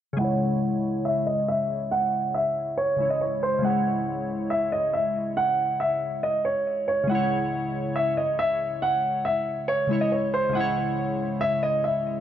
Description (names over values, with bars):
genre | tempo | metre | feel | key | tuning
hip hop | 139 BPM | 4/4 | half-time | C# minor | A4 = 440 Hz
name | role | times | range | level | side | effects
glassy digital keys | accompaniment | 0.1-12.2 s | C#3 to C#5 | -28 LUFS | left 2 dB | chorus, low-pass filter
dark concert grand piano | melody | 0.2-12.2 s | B#4 to F#5 | -24 LUFS | right 1 dB | low-pass filter, ping-pong delay
room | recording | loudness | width
light reverb, studio reverb | dark, warm production | -22 LUFS | side -10 dB against mid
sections
0.2-12.2 A section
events
filter sweep 0.2-12.2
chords
0.2 C#m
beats
| 0.19 0.62 1.05 1.48 | 1.91 2.35 2.78 3.21 | 3.64 4.07 4.50 4.94 | 5.37 5.80 6.23 6.66 | 7.09 7.53 7.96 8.39 | 8.82 9.25 9.68 10.12 | 10.55 10.98 11.41 11.84